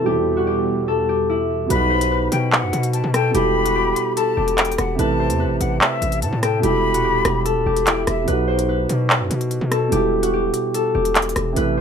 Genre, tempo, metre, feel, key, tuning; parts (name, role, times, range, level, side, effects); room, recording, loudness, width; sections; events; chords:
hip hop, drill; 146 BPM; 4/4; half-time; E harmonic minor; A4 = 440 Hz
concert harp; melody; 0.0-11.8 s; E4 to C5; -21 LUFS; left 3 dB; low-pass filter
dark baby grand piano; accompaniment; 0.0-11.8 s; B2 to A4; -24 LUFS; right 6 dB; low-pass filter
warm analog pad; sustained chords; 0.0-1.7 s; E2 to G3; -27 LUFS; equal; chorus
breathy jazz flute; second line; 1.7-8.3 s; E5 to B5; -24 LUFS; left 4 dB; ping-pong delay
distorted 808-style bass; bass; 1.7-11.8 s; D#1 to B2; -23 LUFS; equal; distortion
drill drum kit; drums; 1.7-11.7 s; handclaps, hi-hat, rim click; -20 LUFS; equal
moderate studio reverb, RT60 0.6 s; -17 LUFS; side -7 dB against mid
0.0-1.7 A section; 1.7-11.8 B section
0.1 Em; 1.7 B; 3.3 Em; 5.0 Am; 6.6 Em; 8.3 B; 9.9 Em